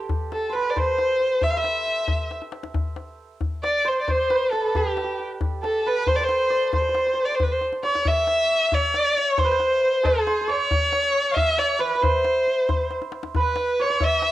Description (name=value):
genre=Persian modal ensemble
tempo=91 BPM (dotted quarters)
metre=6/8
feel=straight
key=C dastgah mahur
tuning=A4 = 440 Hz
part: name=santur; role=second line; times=0.0-14.3 s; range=G4 to E5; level=-28 LUFS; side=right 5 dB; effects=cassette tape
part: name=tombak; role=percussion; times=0.1-14.3 s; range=none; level=-26 LUFS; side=left 2 dB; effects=none
part: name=warm violin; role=melody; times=0.3-14.3 s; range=G4 to F5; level=-21 LUFS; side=equal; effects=cassette tape
room=wet studio reverb, RT60 0.7 s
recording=home recording on cassette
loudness=-20 LUFS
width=side -14 dB against mid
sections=0.0-8.1 A section; 8.1-14.3 B section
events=drum fill 2.3-2.8, 7.6-8.1, 12.9-13.3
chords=none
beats=| 0.10 0.77 | 1.43 2.09 | 2.75 3.41 | 4.08 4.74 | 5.40 6.06 | 6.73 7.39 | 8.05 8.71 | 9.38 10.04 | 10.70 11.36 | 12.02 12.69 | 13.35 14.01